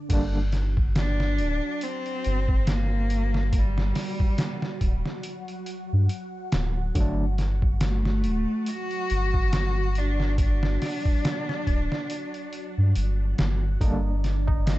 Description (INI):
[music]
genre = trip hop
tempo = 70 BPM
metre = 4/4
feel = swing 57% on 16ths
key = G harmonic minor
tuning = A4 = 440 Hz
[part]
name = string machine, cellos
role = sustained chords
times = 0.0-14.8 s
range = D4 to F#5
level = -37 LUFS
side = equal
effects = phaser, ensemble chorus, vintage 12-bit sampler grit
[part]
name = overdriven tine electric piano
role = accompaniment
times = 0.1-0.4, 6.9-7.2, 13.8-14.1 s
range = D3 to D4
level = -31 LUFS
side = right 1 dB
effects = medium tremolo
[part]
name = soft dub sub bass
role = bass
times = 0.1-14.8 s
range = D1 to G2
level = -24 LUFS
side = equal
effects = tube saturation
[part]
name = trip hop sampler-style drum kit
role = drums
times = 0.1-14.8 s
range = crash cymbal, hi-hat, kick drum, snare drum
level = -26 LUFS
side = equal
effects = high-pass filter on hats, high-pass filter on snare, high-pass filter on cymbals, high-pass filter on kick
[part]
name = rich cello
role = melody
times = 1.0-14.8 s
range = G3 to F#4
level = -30 LUFS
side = equal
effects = tape echo
[part]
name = tabla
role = percussion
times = 13.8-14.8 s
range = none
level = -39 LUFS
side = right 6 dB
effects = none
[sound]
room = digital ambience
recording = dark, warm production, nothing above 8.0 kHz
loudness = -23 LUFS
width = side -17 dB against mid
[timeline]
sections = 0.1-14.8 A section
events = none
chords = 0.1 G5; 7.0 D; 13.8 Gm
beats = | 0.10 0.95 1.81 2.67 | 3.53 4.38 5.24 6.10 | 6.96 7.81 8.67 9.53 | 10.38 11.24 12.10 12.96 | 13.81 14.67